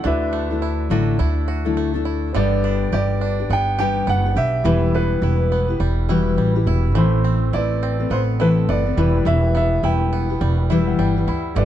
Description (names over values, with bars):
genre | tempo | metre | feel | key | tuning
acoustic pop | 104 BPM | 4/4 | swing 60% on 16ths | E minor | A4 = 440 Hz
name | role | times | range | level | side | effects
warm upright piano | melody | 0.0-11.7 s | B4 to G5 | -24 LUFS | right 3 dB | none
clear baby grand piano | accompaniment | 0.0-11.7 s | G3 to B5 | -31 LUFS | left 1 dB | none
fingerpicked steel-string acoustic guitar | accompaniment | 0.0-11.7 s | A2 to B4 | -21 LUFS | left 4 dB | none
bluegrass banjo | arpeggios | 0.0-11.7 s | D3 to G4 | -30 LUFS | right 8 dB | none
upright bass | bass | 0.0-11.7 s | E1 to D2 | -20 LUFS | right 1 dB | none
room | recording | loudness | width
light reverb | dark, warm production, nothing above 10.7 kHz | -17 LUFS | side -11 dB against mid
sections
0.0-2.4 A section; 2.4-11.7 B section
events
grand piano fill 10.4-11.6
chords
0.0 Dadd9; 2.4 G; 4.7 Em; 7.0 Amadd9; 9.0 Em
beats
| 0.05 0.63 1.20 1.78 | 2.35 2.93 3.50 4.08 | 4.66 5.23 5.81 6.38 | 6.96 7.54 8.11 8.69 | 9.26 9.84 10.41 10.99 | 11.57